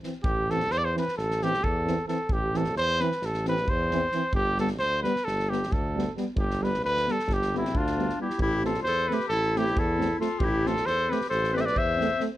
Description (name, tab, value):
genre	balkan folk, Balkan brass band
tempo	267 BPM (eighths)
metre	9/8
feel	straight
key	A minor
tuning	A4 = 440 Hz
part	mellow euphonium	accompaniment	0.0-12.3 s	E3 to A3	-33 LUFS	right 6 dB	none
part	warm French horn	accompaniment	0.0-12.3 s	B3 to C4	-34 LUFS	left 6 dB	none
part	soft-mallet drum kit	percussion	0.0-12.2 s	kick drum, snare drum	-33 LUFS	equal	none
part	mellow trumpet	melody	0.2-12.3 s	E4 to E5	-27 LUFS	equal	none
part	clear tuba	bass	0.2-12.1 s	G1 to E2	-30 LUFS	equal	none
part	clear clarinet	second line	7.6-12.2 s	C4 to C5	-30 LUFS	left 4 dB	none
room	light reverb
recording	none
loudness	-24 LUFS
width	side -14 dB against mid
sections	0.2-12.4 A section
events	speeding up 0.0-12.4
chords	0.2 Am; 4.3 G; 8.4 Am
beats	0.02 | 0.25 0.48 0.70 0.93 1.16 1.39 1.62 1.84 2.07 | 2.30 2.52 2.75 2.98 3.20 3.43 3.66 3.88 4.11 | 4.33 4.56 4.79 5.01 5.24 5.46 5.69 5.91 6.14 | 6.37 6.59 6.81 7.04 7.26 7.49 7.71 7.94 8.16 | 8.38 8.61 8.83 9.06 9.28 9.50 9.73 9.95 10.17 | 10.40 10.62 10.84 11.06 11.29 11.51 11.73 11.96 12.18